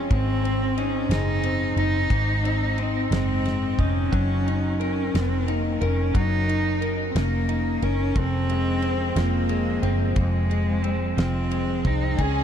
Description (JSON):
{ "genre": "six-eight pop ballad", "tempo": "60 BPM (dotted quarters)", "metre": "6/8", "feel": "straight", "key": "unclear", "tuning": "A4 = 440 Hz", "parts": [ { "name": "warm cello", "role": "melody", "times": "0.0-12.4 s", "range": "Ab3 to Eb4", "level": "-26 LUFS", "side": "equal", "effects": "diffuse ambient delay" }, { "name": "direct-recorded clean electric guitar", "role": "accompaniment", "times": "0.0-12.4 s", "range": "F2 to Bb4", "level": "-27 LUFS", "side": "equal", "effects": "double-tracked left and right" }, { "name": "vintage muted fingered electric bass", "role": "bass", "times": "0.0-12.4 s", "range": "F1 to Db2", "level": "-25 LUFS", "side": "equal", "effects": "none" }, { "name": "damped 70s drum kit", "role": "drums", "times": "0.1-12.3 s", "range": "kick drum, ride cymbal, snare drum", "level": "-29 LUFS", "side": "equal", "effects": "none" }, { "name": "warm symphonic violin section", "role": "second line", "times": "12.2-12.4 s", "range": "Ab4", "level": "-26 LUFS", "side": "equal", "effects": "none" } ], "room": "moderate huge ambient reverb, RT60 6.9 s", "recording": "dreamy mix soaked in reverb", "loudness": "-21 LUFS", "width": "side -8 dB against mid", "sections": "0.0-12.4 A section", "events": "none", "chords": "0.1 Ab; 4.1 Ebm7; 8.2 Fm", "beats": "| 0.11 1.10 | 2.10 3.11 | 4.12 5.14 | 6.15 7.15 | 8.16 9.16 | 10.16 11.17 | 12.19" }